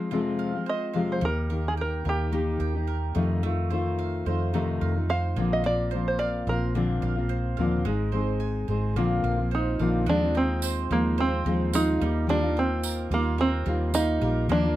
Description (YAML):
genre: acoustic pop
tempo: 108 BPM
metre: 4/4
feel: swing 55% on 16ths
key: Eb major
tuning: A4 = 443 Hz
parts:
  - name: fingerpicked steel-string acoustic guitar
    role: accompaniment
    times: 0.0-14.8 s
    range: F2 to Ab4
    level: -28 LUFS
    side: left 3 dB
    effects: none
  - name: bowl-back mandolin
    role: arpeggios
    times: 0.0-14.8 s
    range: G3 to Ab5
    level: -37 LUFS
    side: right 9 dB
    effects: slapback echo
  - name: open-back banjo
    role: melody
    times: 0.7-14.8 s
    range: Bb3 to F5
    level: -27 LUFS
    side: right 2 dB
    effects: none
  - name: vintage muted fingered electric bass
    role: bass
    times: 1.2-14.8 s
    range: Ab1 to F2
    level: -28 LUFS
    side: right 1 dB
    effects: none
  - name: tambourine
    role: percussion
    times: 10.6-14.1 s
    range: none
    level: -34 LUFS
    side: right 8 dB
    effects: none
room: moderate studio ambience, RT60 0.5 s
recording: none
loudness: -23 LUFS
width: side -14 dB against mid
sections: 0.0-10.1 A section; 10.1-14.8 B section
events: none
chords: 0.0 Fm; 1.2 Eb; 3.2 F7; 5.4 Bbadd9; 7.9 Ab; 9.0 Bbadd9; 10.1 Fm7/Eb; 12.0 Ebadd9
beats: 0.12 0.67 | 1.22 1.78 2.33 2.88 | 3.44 3.99 4.54 5.10 | 5.65 6.20 6.76 7.31 | 7.86 8.42 8.97 9.52 | 10.07 10.63 11.18 11.73 | 12.29 12.84 13.39 13.94 | 14.49